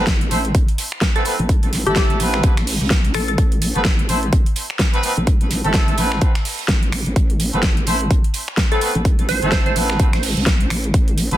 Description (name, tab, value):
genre	bass house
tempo	127 BPM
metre	4/4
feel	swing 58% on 16ths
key	A minor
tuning	A4 = 437 Hz
part	clear horn section	stabs	0.0-11.4 s	A3 to C5	-24 LUFS	right 1 dB	sidechain pumping, digital delay
part	vowel-sweep wobble bass	bass	0.0-11.4 s	G1 to C2	-21 LUFS	equal	chorus, tube saturation, sidechain pumping
part	big-room dance drum kit	drums	0.1-11.4 s	finger snaps, hi-hat, snare drum	-23 LUFS	equal	overdrive
part	damped 70s drum kit	drums	0.1-11.3 s	hi-hat, snare drum	-32 LUFS	right 6 dB	none
part	electronic kick drum	drums	0.1-11.1 s	none	-17 LUFS	equal	overdrive
part	glassy wavetable pluck	melody	1.2-3.3, 8.7-9.7 s	G4 to C5	-24 LUFS	equal	chorus, digital delay
room	little or no reverb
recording	dense, heavily limited modern master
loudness	-15 LUFS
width	side -13 dB against mid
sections	0.0-11.4 A section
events	none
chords	0.0 Amadd9